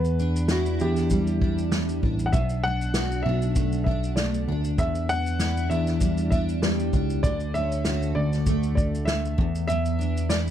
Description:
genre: acoustic pop.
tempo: 98 BPM.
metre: 4/4.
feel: swing 55% on 16ths.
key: unclear.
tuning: A4 = 440 Hz.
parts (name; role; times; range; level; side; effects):
dark upright piano; melody; 0.0-10.4 s; F#4 to F#5; -30 LUFS; equal; none.
picked steel-string acoustic guitar; accompaniment; 0.0-10.5 s; E2 to F#4; -28 LUFS; equal; double-tracked left and right.
barky tine electric piano; bass; 0.0-10.5 s; A1 to E2; -26 LUFS; equal; fast stereo tremolo.
unplugged drum kit; drums; 0.0-10.5 s; kick drum, shaker, snare drum; -27 LUFS; equal; none.
room: little or no reverb.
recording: none.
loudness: -22 LUFS.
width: side -10 dB against mid.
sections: 0.0-10.5 A section.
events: none.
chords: 0.0 Em7; 2.3 Bm7; 4.8 Em7; 7.2 Dmaj7; 9.4 Dsus2/E.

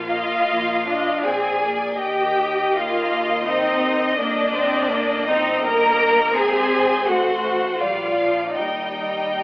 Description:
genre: classical, slow romantic movement for string orchestra.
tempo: 83 BPM.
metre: 3/4.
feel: uneven beats, rubato.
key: Eb major.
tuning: A4 = 438 Hz.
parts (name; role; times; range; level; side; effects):
clear studio violin section; second line; 0.0-9.4 s; D5 to Bb5; -24 LUFS; left 1 dB; none.
rich studio viola section; accompaniment; 0.0-9.4 s; F3 to D4; -26 LUFS; equal; none.
clear studio cello section; bass; 0.0-9.4 s; D4 to Bb4; -21 LUFS; equal; none.
rich studio double bass section; bass; 0.0-9.4 s; G1 to Eb2; -35 LUFS; right 1 dB; none.
clear studio violin section; melody; 0.1-9.4 s; C5 to G5; -24 LUFS; left 1 dB; none.
room: moderate scoring stage reverb, RT60 1.6 s.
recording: telephone sound.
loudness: -17 LUFS.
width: side -23 dB against mid.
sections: 0.0-9.4 A section.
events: none.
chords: 0.0 Bbsus4; 1.2 Bb; 2.0 Eb; 4.2 Eb/G; 6.4 Ab; 7.1 Am6; 7.8 Bb; 8.6 Eb.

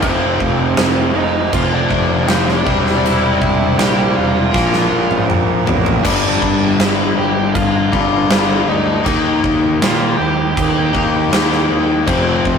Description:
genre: quiet-loud alternative rock.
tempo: 80 BPM.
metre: 4/4.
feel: straight.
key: unclear.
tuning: A4 = 439 Hz.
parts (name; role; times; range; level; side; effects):
bluesy overdriven lead guitar; melody; 0.0-12.6 s; C4 to G5; -21 LUFS; right 2 dB; distortion.
crunchy overdriven guitar; riff; 0.0-12.6 s; F2 to Eb4; -24 LUFS; right 2 dB; none.
distorted electric guitar; riff; 0.0-6.0 s; F2 to C4; -21 LUFS; right 9 dB; overdrive.
overdriven semi-hollow guitar; riff; 0.0-12.6 s; F2 to Eb4; -18 LUFS; left 6 dB; none.
fuzz picked electric bass; bass; 0.0-12.6 s; E1 to Bb2; -21 LUFS; right 1 dB; overdrive.
huge arena drum kit; drums; 0.0-12.6 s; crash cymbal, kick drum, snare drum, toms; -18 LUFS; right 1 dB; none.
room: moderate studio reverb, RT60 0.5 s.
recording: rough rehearsal-room recording.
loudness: -12 LUFS.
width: side -6 dB against mid.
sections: 0.0-6.0 A section; 6.0-12.6 A section.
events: drum fill 4.5-6.0.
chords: 0.0 F5; 2.7 C/E; 4.5 Bb5; 6.0 G5; 9.1 Eb; 12.1 F5.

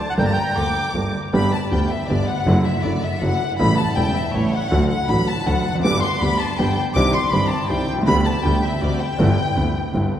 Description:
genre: tango.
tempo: 160 BPM.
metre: 3/4.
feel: rubato.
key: G major.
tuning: A4 = 440 Hz.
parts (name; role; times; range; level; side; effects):
warm studio violin section; second line; 0.0-9.9 s; C#5 to D6; -23 LUFS; left 2 dB; none.
bandoneon; melody; 0.1-0.9 s; F#5 to A5; -26 LUFS; right 1 dB; none.
warm concert grand piano; accompaniment; 0.2-10.1 s; E1 to A4; -20 LUFS; right 1 dB; none.
clear double bass; bass; 0.2-10.1 s; E1 to D2; -23 LUFS; equal; none.
room: wet church reverb, RT60 3.7 s.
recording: recorded in a church or concert hall, vinyl crackle.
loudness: -17 LUFS.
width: side -10 dB against mid.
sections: 0.0-1.3 A section; 1.3-10.2 B section.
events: violin section solo 1.3-10.2.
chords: 0.2 Gmadd9; 1.3 G; 2.5 Dadd9/F#; 3.6 A7; 4.7 D; 5.8 G; 7.0 Cmadd9; 8.1 G/D; 8.8 D7; 9.2 G6.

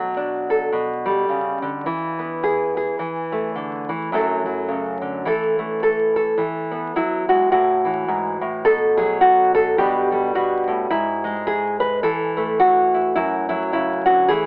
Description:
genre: folk, solo fingerstyle acoustic guitar.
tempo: 106 BPM.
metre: 4/4.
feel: swing 59% on 8ths.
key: A major.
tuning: A4 = 440 Hz.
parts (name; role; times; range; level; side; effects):
nylon-string guitar; solo; 0.0-14.5 s; F#2 to B4; -17 LUFS; equal; cassette tape, tape echo.
room: moderate booth ambience, RT60 0.2 s.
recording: home recording on cassette, vinyl crackle, telephone sound.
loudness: -17 LUFS.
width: side -34 dB against mid.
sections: 0.0-7.5 A section; 7.5-14.5 B section.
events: none.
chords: 0.0 Bm7; 0.7 G/B; 1.9 E; 3.0 A5/E; 4.1 F#m7; 5.3 Esus4; 6.4 E; 7.5 A5; 8.7 B5; 9.8 G/B; 10.9 N.C.; 12.0 A5/E; 13.2 F#m7.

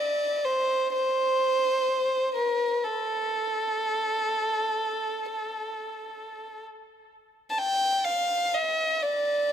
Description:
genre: Arabic maqam ensemble.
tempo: free time.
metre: none.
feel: none.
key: unclear.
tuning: A4 = 439 Hz.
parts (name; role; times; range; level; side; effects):
dark violin; solo; 0.0-9.5 s; A4 to A5; -25 LUFS; equal; tape echo.
room: moderate scoring stage reverb, RT60 1.5 s.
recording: none.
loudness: -24 LUFS.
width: side -9 dB against mid.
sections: 0.0-9.5 A section.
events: none.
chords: none.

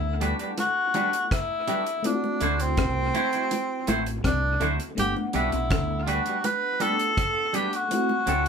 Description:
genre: lovers rock reggae.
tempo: 82 BPM.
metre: 4/4.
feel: straight.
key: G major.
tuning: A4 = 439 Hz.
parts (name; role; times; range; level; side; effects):
clear tenor saxophone; melody; 0.0-8.5 s; C4 to B4; -26 LUFS; equal; none.
FM electric piano with tremolo; accompaniment; 0.0-8.5 s; A3 to F#5; -33 LUFS; left 2 dB; none.
electric guitar through a small old amp; riff; 0.0-8.5 s; G2 to D3; -33 LUFS; left 4 dB; spring reverb, dub echo.
deep dub fingered electric bass; bass; 0.0-8.5 s; G1 to D2; -28 LUFS; right 1 dB; none.
twangy electric guitar; stabs; 0.2-8.4 s; F#3 to C5; -28 LUFS; right 3 dB; none.
deep reggae drum kit; drums; 0.2-8.5 s; hi-hat, kick drum, rim click; -31 LUFS; equal; dub echo.
bongos; percussion; 0.6-8.3 s; none; -36 LUFS; left 1 dB; dub echo.
room: moderate studio ambience, RT60 0.4 s.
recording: band playing live in one room.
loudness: -23 LUFS.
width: side -6 dB against mid.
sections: 0.0-8.5 A section.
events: none.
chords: 0.0 Gmaj7; 2.0 D9; 5.0 Gmaj7; 7.9 D9.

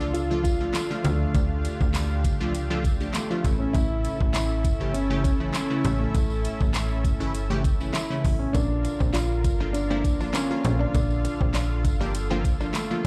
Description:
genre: dance-pop.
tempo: 100 BPM.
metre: 4/4.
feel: straight.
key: unclear.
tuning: A4 = 437 Hz.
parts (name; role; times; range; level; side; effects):
dark grand piano; melody; 0.0-13.1 s; A3 to F4; -32 LUFS; equal; analog delay.
funky polysynth comp; accompaniment; 0.0-13.1 s; C#3 to G4; -33 LUFS; equal; chorus, sidechain pumping.
soft supersaw; sustained chords; 0.0-13.1 s; D3 to F5; -37 LUFS; equal; sidechain pumping.
slap-like FM bass; bass; 0.0-13.1 s; G1 to D2; -30 LUFS; equal; sidechain pumping.
tambourine; percussion; 0.0-12.9 s; none; -46 LUFS; equal; none.
smooth R&B drum kit; drums; 0.1-13.1 s; handclaps, hi-hat, kick drum, snare drum; -28 LUFS; equal; none.
direct-recorded clean electric guitar; riff; 8.5-13.1 s; Bb3 to D4; -39 LUFS; equal; analog chorus.
room: light reverb, digital ambience.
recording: played on a big sound system in a bare room, large studio reverb.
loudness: -25 LUFS.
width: mono.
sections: 0.0-13.1 A section.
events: none.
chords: 0.0 Dm; 3.4 A; 8.5 Bb.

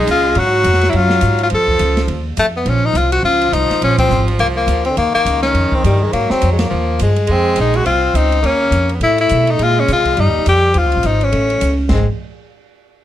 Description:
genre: jazz, small-group swing and bop.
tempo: 208 BPM.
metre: 4/4.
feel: swing 60% on 8ths.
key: unclear.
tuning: A4 = 440 Hz.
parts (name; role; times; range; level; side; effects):
clear tenor saxophone; melody; 0.0-12.1 s; G3 to A4; -15 LUFS; left 3 dB; plate reverb.
bright tenor saxophone; second line; 0.0-12.1 s; D3 to C4; -22 LUFS; right 4 dB; none.
upright bass; bass; 0.0-12.1 s; Ab1 to C3; -16 LUFS; equal; none.
open jazz drum kit; drums; 0.1-12.0 s; crash cymbal, hi-hat, kick drum, ride cymbal, snare drum; -25 LUFS; right 1 dB; none.
room: light reverb.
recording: dark, warm production.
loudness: -12 LUFS.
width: side -12 dB against mid.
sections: 0.0-7.3 A section; 7.3-11.9 B section; 11.9-13.0 C section.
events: band accent 4.0, 6.6.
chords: 0.4 Eadd9 (rootless); 1.5 Faug7; 2.7 Bbm7; 5.0 Eb9; 6.1 Ab13; 6.7 Ebadd9; 7.3 Bbsus2; 7.9 Cm; 8.4 Ebsus2; 9.0 A5; 9.6 Bbsus2; 10.2 Cm; 10.7 Eb9sus4; 11.3 A; 11.9 N.C..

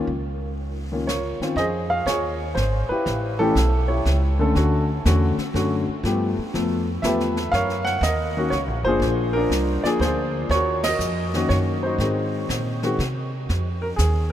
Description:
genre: jazz piano trio.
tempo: 121 BPM.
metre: 3/4.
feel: swing 67% on 8ths.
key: unclear.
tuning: A4 = 440 Hz.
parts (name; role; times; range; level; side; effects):
warm baby grand piano; melody; 0.0-14.3 s; D3 to Gb5; -22 LUFS; left 1 dB; none.
upright bass; bass; 0.0-14.3 s; Gb1 to C3; -24 LUFS; right 1 dB; none.
jazz brush drum kit; drums; 0.1-14.3 s; brushed snare drum, hi-hat, ride cymbal, snare drum; -32 LUFS; equal; none.
room: moderate huge ambient reverb, RT60 9.0 s.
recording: in a vast, echoing space.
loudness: -20 LUFS.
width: side -11 dB against mid.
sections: 0.0-1.6 A section; 1.6-13.5 B section.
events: band accent 10.8.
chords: 0.0 Db6; 1.6 Dbmaj9; 3.1 A7; 4.6 Dmaj7; 6.0 G9; 7.5 Gb6; 9.0 Bb7; 10.5 Ebm7; 12.0 Ab7; 13.5 Dbadd9 (rootless).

